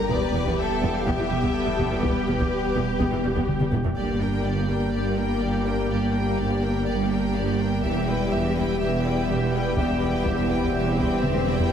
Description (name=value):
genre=cinematic, hybrid orchestral and electronic film score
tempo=124 BPM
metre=4/4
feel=straight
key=unclear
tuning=A4 = 440 Hz
part: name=warm symphonic violin section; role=melody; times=0.0-3.5 s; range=B4 to F5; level=-32 LUFS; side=left 3 dB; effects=none
part: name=clear studio violin section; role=second line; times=0.0-11.7 s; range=G4 to G5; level=-31 LUFS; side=left 3 dB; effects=none
part: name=warm symphonic viola section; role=accompaniment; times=0.0-11.7 s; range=E3 to G4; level=-30 LUFS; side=right 1 dB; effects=none
part: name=sweeping resonant pad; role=sustained chords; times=0.0-11.7 s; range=G3 to G5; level=-29 LUFS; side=equal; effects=chorus
part: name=pure sine sub bass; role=bass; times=0.0-11.7 s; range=E1 to G1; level=-34 LUFS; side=equal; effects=none
part: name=rich symphonic cello section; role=bass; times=0.0-11.7 s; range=E2 to G2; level=-29 LUFS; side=right 2 dB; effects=none
part: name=clear chamber double bass section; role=bass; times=0.1-11.7 s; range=E1 to G1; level=-29 LUFS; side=right 3 dB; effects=none
part: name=taiko ensemble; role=drums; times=0.1-4.9, 7.8-11.7 s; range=none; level=-30 LUFS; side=equal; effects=none
part: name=dark French horn section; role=sustained chords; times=4.0-11.4 s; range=G3 to B3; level=-29 LUFS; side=left 4 dB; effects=none
part: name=swell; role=sound effects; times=10.4-11.7 s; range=none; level=-32 LUFS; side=left 2 dB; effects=none
room=wet scoring stage reverb, RT60 2.1 s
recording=heavily compressed radio sound, multiband compression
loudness=-21 LUFS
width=side -8 dB against mid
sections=0.0-4.0 A section; 4.0-11.7 B section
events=drum fill 3.5-4.0, 11.2-11.7; swell 10.4-11.7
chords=0.1 Em; 4.0 Gm; 7.8 Em